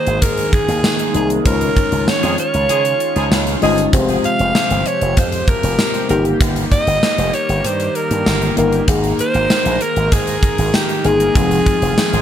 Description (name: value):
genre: 1980s-style pop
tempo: 97 BPM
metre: 4/4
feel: straight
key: unclear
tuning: A4 = 440 Hz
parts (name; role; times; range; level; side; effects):
- raspy alto saxophone; melody; 0.0-12.2 s; G4 to F5; -19 LUFS; right 1 dB; tape echo
- mellow FM electric piano; accompaniment; 0.0-12.2 s; F3 to Eb5; -20 LUFS; left 3 dB; chorus
- chorused pulse-width pad; sustained chords; 0.0-12.2 s; C3 to Bb4; -25 LUFS; right 2 dB; none
- slap bass with an envelope filter; bass; 0.1-12.2 s; F1 to Db3; -20 LUFS; equal; none
- gated 80s drum kit; drums; 0.1-12.2 s; hi-hat, kick drum, snare drum, tambourine; -18 LUFS; equal; gated reverb
- clear horn section; stabs; 2.2-3.8, 12.1-12.2 s; F3 to Ab4; -25 LUFS; right 1 dB; tape echo
room: light reverb, studio ambience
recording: none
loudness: -13 LUFS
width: side -10 dB against mid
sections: 0.0-12.2 A section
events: band accent 1.5-3.9, 11.4-12.2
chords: 0.0 Absus2; 1.5 Dbadd9; 3.9 Fmadd9; 6.1 Eb; 8.9 Absus2; 11.4 Fm7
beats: 0.22 0.84 | 1.46 2.08 2.70 3.31 | 3.93 4.55 5.17 5.79 | 6.41 7.03 7.64 8.26 | 8.88 9.50 10.12 10.74 | 11.36 11.97